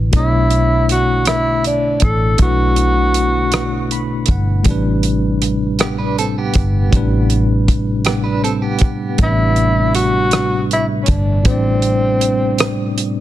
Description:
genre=slow six-eight R&B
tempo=53 BPM (dotted quarters)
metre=6/8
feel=straight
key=unclear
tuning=A4 = 437 Hz
part: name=barky tine electric piano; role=accompaniment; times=0.0-13.2 s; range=A2 to B5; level=-18 LUFS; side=left 1 dB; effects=medium stereo tremolo
part: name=vintage muted fingered electric bass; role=bass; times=0.0-13.2 s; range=G1 to B1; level=-19 LUFS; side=equal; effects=none
part: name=damped 70s drum kit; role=drums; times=0.1-13.1 s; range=hi-hat, kick drum, rim click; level=-16 LUFS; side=equal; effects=soft clipping on snare
part: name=breathy tenor saxophone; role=melody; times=0.2-4.3, 9.2-12.9 s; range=C4 to A4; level=-18 LUFS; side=equal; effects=digital delay
part: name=clean electric guitar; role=second line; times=5.8-9.7 s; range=B3 to B4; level=-23 LUFS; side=right 6 dB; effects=tremolo
room=light reverb, studio reverb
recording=dense, heavily limited modern master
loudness=-13 LUFS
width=side -13 dB against mid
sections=0.0-13.2 A section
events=tine electric piano fill 3.5-4.7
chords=0.0 Bm11; 4.7 Am11

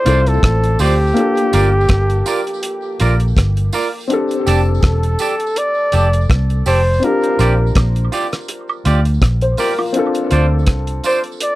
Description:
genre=lovers rock reggae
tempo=82 BPM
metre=4/4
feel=swing 55% on 16ths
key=D minor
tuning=A4 = 440 Hz
part: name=warm flugelhorn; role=melody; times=0.0-11.6 s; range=G4 to D5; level=-19 LUFS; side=equal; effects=tape echo
part: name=dark baby grand piano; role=accompaniment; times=0.0-11.6 s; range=Bb3 to C5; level=-21 LUFS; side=left 3 dB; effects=tape echo
part: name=twangy electric guitar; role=stabs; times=0.1-11.2 s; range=F4 to D5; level=-19 LUFS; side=right 4 dB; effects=none
part: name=vintage muted fingered electric bass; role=bass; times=0.1-11.0 s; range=E1 to D2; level=-14 LUFS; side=equal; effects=none
part: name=cloth-damped thuddy drum kit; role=drums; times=0.1-11.6 s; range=hi-hat, kick drum, rim click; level=-18 LUFS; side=equal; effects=none
part: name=tambourine and woodblock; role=percussion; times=0.1-11.2 s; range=none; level=-30 LUFS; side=right 6 dB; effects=tape echo
room=light reverb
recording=dry, close 1970s-style studio recording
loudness=-13 LUFS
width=side -17 dB against mid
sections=0.0-11.6 A section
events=none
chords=0.0 Dm7; 1.2 Gm7; 4.1 F69; 7.0 Bb6; 9.9 Dm7

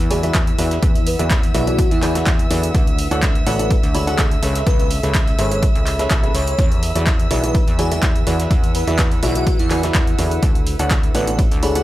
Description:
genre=piano house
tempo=125 BPM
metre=4/4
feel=swing 53% on 16ths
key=E mixolydian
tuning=A4 = 436 Hz
part: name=dark chamber violin section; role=sustained chords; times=0.0-11.8 s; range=E5 to E6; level=-30 LUFS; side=right 2 dB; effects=sidechain pumping
part: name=plucky analog bass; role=bass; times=0.0-11.8 s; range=G#1 to E2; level=-22 LUFS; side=equal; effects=sidechain pumping
part: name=warbly tape-like pad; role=texture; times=0.0-11.8 s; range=D4 to B5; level=-29 LUFS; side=right 2 dB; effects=chorus, built-in reverb, sidechain pumping
part: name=airy dreamy lead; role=melody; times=0.1-11.8 s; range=E4 to C#5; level=-26 LUFS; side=equal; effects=chorus, digital delay
part: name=dark upright piano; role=riff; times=0.1-11.8 s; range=D3 to B5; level=-23 LUFS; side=equal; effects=sidechain pumping
part: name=breakbeat sampler-style drum kit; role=drums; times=0.1-11.8 s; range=hi-hat, snare drum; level=-35 LUFS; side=right 1 dB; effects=none
part: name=punchy analog drum machine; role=drums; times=0.1-11.8 s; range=handclaps, hi-hat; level=-25 LUFS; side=equal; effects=none
part: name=electronic kick drum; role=drums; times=0.3-11.5 s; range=none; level=-18 LUFS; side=equal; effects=none
room=little or no reverb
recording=none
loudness=-15 LUFS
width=side -15 dB against mid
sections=0.0-11.8 A section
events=none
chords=0.0 E9; 2.7 Dmaj7; 4.4 Amaj9; 6.6 E9; 10.4 Dmaj7

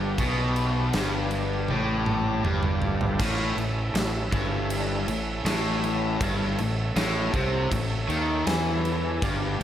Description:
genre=blues rock power trio and southern rock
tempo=80 BPM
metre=4/4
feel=straight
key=A mixolydian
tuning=A4 = 441 Hz
part: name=overdriven tonewheel organ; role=sustained chords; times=0.0-9.6 s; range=A3 to F5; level=-35 LUFS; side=right 3 dB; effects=chorus vibrato
part: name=raw garage guitar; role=riff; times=0.0-9.6 s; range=G2 to E3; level=-27 LUFS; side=left 1 dB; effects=overdrive, spring reverb
part: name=fuzz fingered electric bass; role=bass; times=0.0-9.6 s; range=G1 to E2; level=-29 LUFS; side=equal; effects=overdrive
part: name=big rock drum kit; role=drums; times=0.2-9.6 s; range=crash cymbal, kick drum, snare drum, toms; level=-29 LUFS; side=right 1 dB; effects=none
room=light reverb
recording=none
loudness=-23 LUFS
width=side -10 dB against mid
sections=0.0-3.2 A section; 3.2-9.6 A section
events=drum fill 1.7-3.2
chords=0.0 G5; 3.2 A

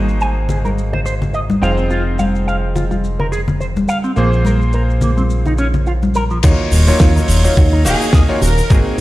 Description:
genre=nu-disco, nu disco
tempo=106 BPM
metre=4/4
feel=swing 55% on 16ths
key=Eb dorian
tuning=A4 = 440 Hz
part: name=clear electric grand piano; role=accompaniment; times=0.0-9.0 s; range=Gb3 to F5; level=-21 LUFS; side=equal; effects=slapback echo
part: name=fat analog bass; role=bass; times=0.0-9.0 s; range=Eb1 to Eb2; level=-16 LUFS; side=equal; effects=none
part: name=damped 70s drum kit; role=drums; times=0.1-9.0 s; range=crash cymbal, hi-hat, shaker, snare drum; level=-20 LUFS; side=right 1 dB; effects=low-pass filter on cymbals, low-pass filter on hats, low-pass filter on snare, low-pass filter on perc, low-pass filter on room
part: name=maracas and congas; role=percussion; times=0.1-6.4 s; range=none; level=-21 LUFS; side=left 2 dB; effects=none
part: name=electric guitar with an envelope filter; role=riff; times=0.2-8.8 s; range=F3 to Ab5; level=-22 LUFS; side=right 1 dB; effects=analog chorus, slapback echo
part: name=electronic kick drum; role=drums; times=6.4-8.8 s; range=none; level=-12 LUFS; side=equal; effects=none
part: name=warm symphonic violin section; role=melody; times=7.9-8.7 s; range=Ab4 to Bb4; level=-21 LUFS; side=equal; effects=analog delay
room=light reverb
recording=played on a big sound system in a bare room, stone room reverb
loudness=-12 LUFS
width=side -17 dB against mid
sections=0.0-6.4 A section; 6.4-9.0 B section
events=filter sweep on clean electric guitar 0.0-6.4; drop 6.4-9.0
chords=0.0 Ab7; 1.6 Fm7; 4.2 Bb7(no3); 6.4 Ebm7

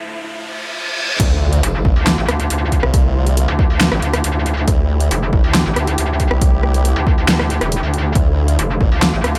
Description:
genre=heavy wobble dubstep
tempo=138 BPM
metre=4/4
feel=half-time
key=D minor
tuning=A4 = 440 Hz
part: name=warm studio string section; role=sustained chords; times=0.0-9.4 s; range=D2 to G4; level=-28 LUFS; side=equal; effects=sidechain pumping, low-pass filter
part: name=riser, reverse cymbal and impact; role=sound effects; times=0.0-2.9 s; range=none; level=-25 LUFS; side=equal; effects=none
part: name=formant-sweep wobble bass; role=bass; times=1.2-8.9 s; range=A1 to D2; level=-18 LUFS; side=equal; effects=chorus, overdrive
part: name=big-room dance drum kit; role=drums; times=1.2-9.4 s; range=crash cymbal, hi-hat, rim click, snare drum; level=-21 LUFS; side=equal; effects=overdrive, small room ambience
part: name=electronic kick drum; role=drums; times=1.2-8.9 s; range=none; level=-18 LUFS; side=equal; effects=small room ambience
part: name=metallic wobble bass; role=bass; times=1.6-9.4 s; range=E1 to D2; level=-20 LUFS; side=equal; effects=distortion, chorus, overdrive
room=little or no reverb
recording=high-pass filter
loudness=-16 LUFS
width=mono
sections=0.0-1.2 A section; 1.2-9.4 B section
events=break 0.0-1.2; build-up 0.0-1.2; riser 0.0-1.2; filter sweep 0.0-1.2; reverse cymbal 0.3-1.2; drop 1.2-9.4; impact 1.2-2.9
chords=0.0 Dmadd9

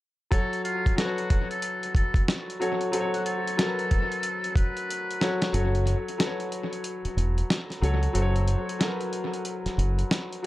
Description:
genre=hip hop, boom-bap hip-hop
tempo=92 BPM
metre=4/4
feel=swing 63% on 16ths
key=F# minor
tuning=A4 = 440 Hz
part: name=trumpet with metal mute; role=melody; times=0.3-5.5 s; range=E#4 to B4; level=-32 LUFS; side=equal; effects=high-pass filter, low-pass filter, analog delay
part: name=bright grand piano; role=accompaniment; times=0.3-10.5 s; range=F#3 to C#5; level=-30 LUFS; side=left 1 dB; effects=cassette tape, high-pass filter, low-pass filter, analog delay
part: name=dusty soul sampler-style drum kit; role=drums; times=0.3-10.4 s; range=hi-hat, kick drum, snare drum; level=-27 LUFS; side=equal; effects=analog delay
part: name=deep dub fingered electric bass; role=bass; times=5.5-10.0 s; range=E1 to C#2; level=-24 LUFS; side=equal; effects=none
room=light reverb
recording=echo-heavy mix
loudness=-24 LUFS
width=side -17 dB against mid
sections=0.3-5.5 A section; 5.5-10.5 B section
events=drum fill 4.9-5.5; kick muted 5.5-10.5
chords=0.3 F#m

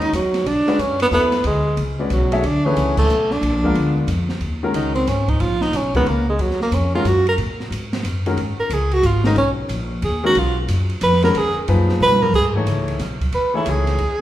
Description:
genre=modal jazz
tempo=182 BPM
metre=3/4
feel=swing 64% on 8ths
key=unclear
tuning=A4 = 440 Hz
part: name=breathy tenor saxophone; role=melody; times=0.0-14.2 s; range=F#3 to Cb5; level=-19 LUFS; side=right 1 dB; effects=none
part: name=clear baby grand piano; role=accompaniment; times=0.0-14.0 s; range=Bb2 to E5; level=-24 LUFS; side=left 3 dB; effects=none
part: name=upright bass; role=bass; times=0.0-14.2 s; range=Ab1 to Cb3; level=-21 LUFS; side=left 1 dB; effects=none
part: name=open jazz drum kit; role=drums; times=0.0-14.1 s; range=crash cymbal, hi-hat, kick drum, ride cymbal, snare drum, toms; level=-27 LUFS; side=right 1 dB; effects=none
room=moderate recital hall reverb, RT60 1.5 s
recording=recorded in a church or concert hall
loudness=-16 LUFS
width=side -13 dB against mid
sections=0.0-4.4 A section; 4.4-12.3 B section; 12.3-14.2 B section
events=band accent 2.9; tenor saxophone solo 4.4-14.2; drum fill 12.0-12.3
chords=0.5 Bm9; 3.4 A#7b9; 4.4 Abm11; 12.3 C#m9

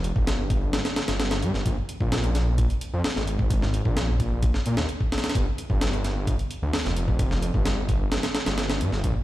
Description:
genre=breakbeat, breaks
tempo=130 BPM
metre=4/4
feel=straight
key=G phrygian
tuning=A4 = 440 Hz
part: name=detuned saw bass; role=bass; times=0.0-9.1 s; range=F1 to Bb2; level=-25 LUFS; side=equal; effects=tube saturation
part: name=breakbeat sampler-style drum kit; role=drums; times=0.0-9.2 s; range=hi-hat, kick drum, snare drum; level=-25 LUFS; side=equal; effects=studio reverb
room=little or no reverb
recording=played on a big sound system in a bare room, large studio reverb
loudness=-22 LUFS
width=side -15 dB against mid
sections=0.0-9.2 A section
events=none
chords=none

